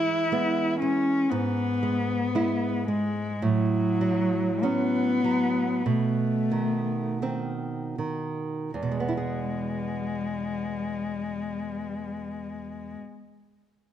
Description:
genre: romantic duo for cello and classical guitar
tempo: 38-61 BPM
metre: 4/4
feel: rubato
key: E major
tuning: A4 = 440 Hz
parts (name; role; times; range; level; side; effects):
- rich cello; melody; 0.0-13.0 s; F#3 to E4; -27 LUFS; left 3 dB; none
- nylon-string guitar; accompaniment; 0.0-13.4 s; E2 to G#4; -28 LUFS; right 4 dB; none
room: moderate scoring stage reverb, RT60 1.6 s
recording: none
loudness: -25 LUFS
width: side -10 dB against mid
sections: 0.0-8.7 A section; 8.7-13.9 B section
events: slowing down 0.0-8.7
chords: 0.0 E; 1.3 E/G#; 3.4 F#m/A; 5.9 B7b9; 8.7 E

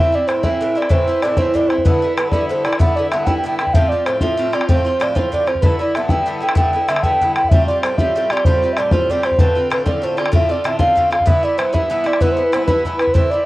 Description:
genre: celtic folk, Celtic slide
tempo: 128 BPM (dotted quarters)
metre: 12/8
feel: straight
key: unclear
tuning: A4 = 440 Hz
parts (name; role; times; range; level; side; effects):
- mellow baroque flute; melody; 0.0-13.5 s; B4 to G5; -17 LUFS; right 1 dB; cassette tape, plate reverb
- Irish bouzouki; accompaniment; 0.0-13.5 s; G2 to F4; -22 LUFS; equal; cassette tape, plate reverb
- bodhran; percussion; 0.3-13.2 s; none; -17 LUFS; left 1 dB; none
room: moderate small room reverb, RT60 0.5 s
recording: home recording on cassette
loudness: -14 LUFS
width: side -18 dB against mid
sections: 0.0-13.5 A section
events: none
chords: 0.0 Am; 1.9 Em7; 3.7 F; 5.6 Em7; 7.5 Fadd9; 9.4 Dm7; 11.3 Em

